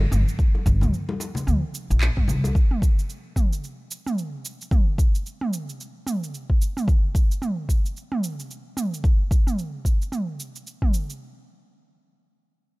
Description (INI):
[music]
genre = organic downtempo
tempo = 111 BPM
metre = 4/4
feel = swing 59% on 16ths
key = G minor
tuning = A4 = 440 Hz
[part]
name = upright bass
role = bass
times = 0.0-2.5 s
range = G1 to D2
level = -21 LUFS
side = equal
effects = none
[part]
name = bongos and congas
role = percussion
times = 0.0-2.5 s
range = none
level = -32 LUFS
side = left 3 dB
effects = none
[part]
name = organic electronic drum kit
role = drums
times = 0.1-11.2 s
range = cabasa, handclaps, toms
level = -29 LUFS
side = right 2 dB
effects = overdrive
[part]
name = electronic kick drum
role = drums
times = 0.4-10.9 s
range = none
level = -20 LUFS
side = equal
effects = none
[sound]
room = studio reverb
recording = none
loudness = -21 LUFS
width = side -23 dB against mid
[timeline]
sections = 0.0-11.2 A section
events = none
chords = none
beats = | 0.39 0.93 1.47 2.01 | 2.55 3.09 3.63 4.17 | 4.71 5.25 5.79 6.33 | 6.87 7.41 7.95 8.49 | 9.04 9.58 10.12 10.66